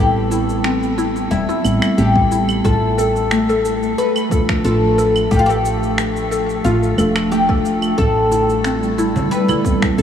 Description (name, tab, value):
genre	organic downtempo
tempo	90 BPM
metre	4/4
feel	straight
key	A minor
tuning	A4 = 440 Hz
part	oud	melody	0.0-10.0 s	E4 to B4	-20 LUFS	left 2 dB	tape echo
part	tine electric piano	accompaniment	0.0-10.0 s	F3 to F4	-22 LUFS	right 2 dB	medium tremolo, sidechain pumping, analog delay
part	woody FM bass	bass	0.0-10.0 s	E1 to A1	-21 LUFS	equal	sidechain pumping
part	drifting glass-harmonics texture	texture	0.0-10.0 s	A3 to A4	-26 LUFS	left 5 dB	chorus, built-in reverb
part	mallet-like synth pluck	arpeggios	0.3-9.6 s	G3 to A4	-21 LUFS	left 1 dB	analog chorus, analog delay
part	electronic shaker, finger snaps and claves	drums	0.3-10.0 s	none	-26 LUFS	right 1 dB	studio reverb
part	electronic kick drum	drums	2.2-9.9 s	none	-19 LUFS	equal	overdrive, studio reverb
part	granular cloud pad	sustained chords	8.8-10.0 s	G3 to E5	-23 LUFS	right 4 dB	built-in reverb, sidechain pumping
part	congas and bongos	percussion	8.3-9.8 s	none	-25 LUFS	right 2 dB	none
room	wet huge ambient reverb, RT60 8.0 s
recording	dreamy mix soaked in reverb, small room ambience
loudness	-14 LUFS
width	side -9 dB against mid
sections	0.0-10.0 A section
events	none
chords	0.0 Am7; 2.6 Dm/A; 8.0 Am7